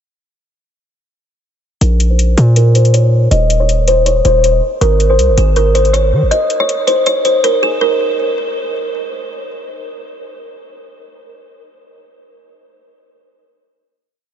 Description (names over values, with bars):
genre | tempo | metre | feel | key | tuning
hip hop, trap | 160 BPM | 4/4 | half-time | Bb minor | A4 = 440 Hz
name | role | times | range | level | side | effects
kalimba | melody | 1.8-8.9 s | Ab4 to Eb5 | -14 LUFS | equal | low-pass filter, ping-pong delay
hard-hitting 808-style bass | bass | 1.8-6.3 s | Eb1 to Eb3 | -11 LUFS | equal | none
electronic hi-hat | drums | 1.8-7.5 s | none | -21 LUFS | left 3 dB | none
room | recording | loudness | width
moderate huge ambient reverb, RT60 7.9 s | dreamy mix soaked in reverb, nothing above 8.0 kHz | -10 LUFS | side -9 dB against mid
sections
1.8-7.8 breakdown; 7.8-10.8 final note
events
filter sweep on kalimba 1.8-7.8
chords
1.8 Bbm; 3.3 Cm/Eb; 4.8 Absus4; 6.3 N.C.